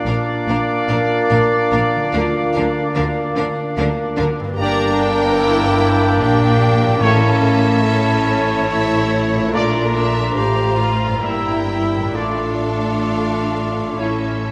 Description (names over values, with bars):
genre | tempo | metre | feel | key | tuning
classical, slow romantic movement for symphony orchestra | 64-75 BPM | 3/4 | rubato | D minor from 4.6 s | A4 = 439 Hz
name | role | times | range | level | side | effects
clear clarinet | second line | 0.0-14.5 s | D4 to F4 | -27 LUFS | equal | none
concert flute | second line | 0.0-14.5 s | F5 to Bb5 | -28 LUFS | equal | none
warm oboe | second line | 0.0-14.5 s | C#5 to E5 | -30 LUFS | equal | none
warm bassoon | accompaniment | 0.0-14.5 s | G3 to Bb3 | -26 LUFS | equal | none
mellow French horn section | sustained chords | 0.0-14.3 s | A3 to G4 | -28 LUFS | equal | none
concert harp | arpeggios | 0.0-14.5 s | G2 to G4 | -31 LUFS | equal | none
warm trumpet section | stabs | 0.0-14.3 s | C#5 to E5 | -28 LUFS | equal | none
warm symphonic violin section | melody | 0.1-14.5 s | C#5 to Bb5 | -32 LUFS | equal | none
warm symphonic violin section | second line | 0.1-14.5 s | G4 to C#5 | -29 LUFS | equal | none
rich symphonic viola section | accompaniment | 0.1-14.5 s | C#4 to G4 | -26 LUFS | equal | none
rich symphonic cello section | bass | 0.1-14.5 s | G2 to D3 | -26 LUFS | equal | none
rich symphonic double bass section | bass | 0.1-14.5 s | G1 to D2 | -25 LUFS | equal | none
timpani | percussion | 7.0-8.2 s | A2 | -25 LUFS | equal | none
room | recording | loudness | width
wet concert hall reverb, RT60 1.9 s | none | -17 LUFS | mono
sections
0.0-14.5 A section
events
none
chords
0.0 Bb; 2.1 Bb/D; 4.6 Gm; 7.0 A; 9.5 Bbmaj7; 11.2 Edim/G; 12.1 Dm/A; 14.0 A